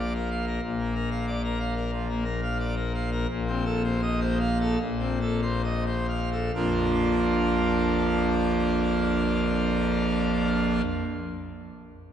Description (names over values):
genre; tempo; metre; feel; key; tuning
classical, organ toccata; 65-94 BPM; 4/4; straight; Bb major; A4 = 440 Hz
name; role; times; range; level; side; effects
pipe organ, full organ; solo; 0.0-10.8 s; Bb1 to F5; -24 LUFS; equal; none
room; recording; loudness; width
wet church reverb, RT60 3.1 s; dark, warm production; -24 LUFS; side -9 dB against mid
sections
0.6-6.6 A section; 6.6-10.2 B section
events
slowing down 0.0-6.6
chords
0.0 Bb; 3.3 F7/Bb; 6.6 Bb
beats
| 0.63 1.28 1.93 2.60 | 3.30 4.03 4.81 5.65 | 6.55 7.47 8.38 9.29